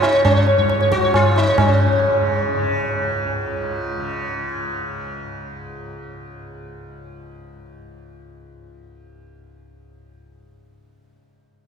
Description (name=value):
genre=indian classical, Hindustani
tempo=137 BPM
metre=3/4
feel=straight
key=unclear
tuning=A4 = 438 Hz
part: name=sitar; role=melody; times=0.0-2.9 s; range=Db4 to Db5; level=-19 LUFS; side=left 1 dB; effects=none
part: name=tanpura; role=drone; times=0.0-11.1 s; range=Db2 to Db3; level=-28 LUFS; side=right 1 dB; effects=none
part: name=tabla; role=percussion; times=0.0-1.7 s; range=none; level=-20 LUFS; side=right 1 dB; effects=none
room=wet cathedral reverb, RT60 7.3 s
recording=recorded in a church or concert hall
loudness=-16 LUFS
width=side -7 dB against mid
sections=0.0-1.6 A section; 1.6-4.2 B section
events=speeding up 0.0-4.2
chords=none